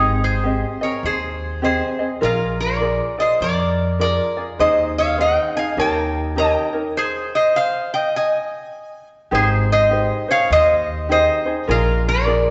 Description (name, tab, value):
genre	Hawaiian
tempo	101 BPM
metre	4/4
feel	swing 63% on 8ths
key	Ab major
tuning	A4 = 439 Hz
part	lap resonator guitar	melody	0.0-12.5 s	Eb4 to Bb5	-21 LUFS	equal	none
part	ukulele	accompaniment	0.0-12.5 s	C4 to Eb5	-26 LUFS	equal	none
part	upright bass	bass	0.0-12.4 s	Ab1 to F2	-25 LUFS	equal	none
room	wet recital hall reverb, RT60 1.8 s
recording	recorded in a church or concert hall, nothing above 8.0 kHz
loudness	-19 LUFS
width	mono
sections	0.0-9.3 A section; 9.3-12.5 A section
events	stop 7.0-9.3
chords	0.0 Abmaj7; 2.2 Bb7; 4.6 Ab/Eb; 5.8 Eb7; 7.0 Ab; 9.3 Abmaj7; 11.7 Bb7